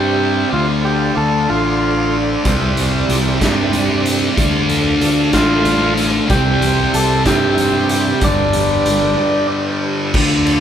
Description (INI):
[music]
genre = psychedelic rock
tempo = 62 BPM (dotted quarters)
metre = 6/8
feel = straight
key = D dorian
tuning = A4 = 440 Hz
[part]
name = combo organ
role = melody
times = 0.0-2.2, 5.3-9.5 s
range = D4 to A4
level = -18 LUFS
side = equal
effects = none
[part]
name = string machine, violins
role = sustained chords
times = 0.0-10.6 s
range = F4 to G5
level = -24 LUFS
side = right 3 dB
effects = ensemble chorus
[part]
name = thick fuzz guitar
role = riff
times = 0.0-10.6 s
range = G2 to D4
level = -17 LUFS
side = equal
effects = distortion, phaser
[part]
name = fingered electric bass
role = bass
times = 0.0-10.6 s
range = G1 to G2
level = -20 LUFS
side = equal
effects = none
[part]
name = raw garage drum kit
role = drums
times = 2.5-10.6 s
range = crash cymbal, hi-hat, kick drum, ride cymbal, snare drum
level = -20 LUFS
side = equal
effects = none
[part]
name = congas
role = percussion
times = 2.5-9.2 s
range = none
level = -29 LUFS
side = right 2 dB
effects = none
[sound]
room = moderate large studio reverb, RT60 1.1 s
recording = band playing live in one room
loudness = -13 LUFS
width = side -9 dB against mid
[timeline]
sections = 0.0-10.1 A section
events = break 9.2-10.1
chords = 0.0 Cadd9; 0.5 Dm7; 2.5 Cadd9; 4.4 Dm7; 6.3 Cadd9; 8.2 G